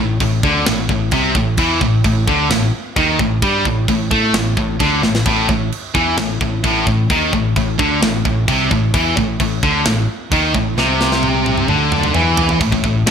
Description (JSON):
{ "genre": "heavy metal", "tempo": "131 BPM", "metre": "4/4", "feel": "straight", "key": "A minor", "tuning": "A4 = 440 Hz", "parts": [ { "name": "fuzz guitar", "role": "riff", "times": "0.0-13.1 s", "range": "A2 to A3", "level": "-22 LUFS", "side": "equal", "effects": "distortion" }, { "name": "scooped high-gain guitar", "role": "riff", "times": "0.0-13.1 s", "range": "A2 to A3", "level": "-19 LUFS", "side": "right 9 dB", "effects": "distortion" }, { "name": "tight distorted guitar", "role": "riff", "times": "0.0-13.1 s", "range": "A2 to A3", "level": "-19 LUFS", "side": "left 8 dB", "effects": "distortion" }, { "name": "modern bright picked electric bass", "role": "bass", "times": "0.0-13.1 s", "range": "A1 to A2", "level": "-22 LUFS", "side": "equal", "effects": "none" }, { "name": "tight metal drum kit", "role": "drums", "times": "0.2-13.1 s", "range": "crash cymbal, kick drum, snare drum, toms", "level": "-20 LUFS", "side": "equal", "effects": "gated reverb" } ], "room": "light reverb, small room ambience", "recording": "bright 1980s-style digital production", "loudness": "-13 LUFS", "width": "side -7 dB against mid", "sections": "0.0-12.6 A section", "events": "half time 0.0-12.6; drum fill 5.0, 10.8-12.6", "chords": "0.0 Am" }